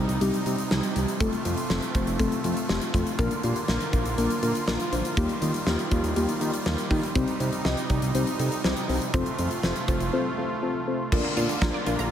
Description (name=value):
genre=synth-pop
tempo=121 BPM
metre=4/4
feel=straight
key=Bb major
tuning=A4 = 440 Hz
part: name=muted felt-like synth keys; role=accompaniment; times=0.0-12.0 s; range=G3 to C6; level=-28 LUFS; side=left 2 dB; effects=chorus
part: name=brassy analog pad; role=sustained chords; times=0.0-12.1 s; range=C3 to F4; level=-31 LUFS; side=right 3 dB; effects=chorus
part: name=fat analog bass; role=bass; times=0.0-12.1 s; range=F1 to Eb3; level=-29 LUFS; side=equal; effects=none
part: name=huge arena drum kit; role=drums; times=0.1-12.1 s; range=crash cymbal, hi-hat, kick drum, snare drum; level=-28 LUFS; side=equal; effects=none
part: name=wide unison pluck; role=arpeggios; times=11.1-12.1 s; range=D3 to Bb5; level=-33 LUFS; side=right 5 dB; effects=digital delay
part: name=downlifter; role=sound effects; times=11.1-12.1 s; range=none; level=-36 LUFS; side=left 2 dB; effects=none
room=light reverb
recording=none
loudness=-23 LUFS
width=side -10 dB against mid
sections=0.0-11.1 A section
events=synth keys fill 10.1-11.1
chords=0.0 Cm; 1.2 F; 3.2 Bb; 5.2 Ebadd9; 7.2 Cm; 9.1 F; 11.1 Bb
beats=0.21 0.71 | 1.20 1.70 2.19 2.69 | 3.19 3.68 4.18 4.67 | 5.17 5.67 6.16 6.66 | 7.15 7.65 8.15 8.64 | 9.14 9.63 10.13 10.62 | 11.12 11.62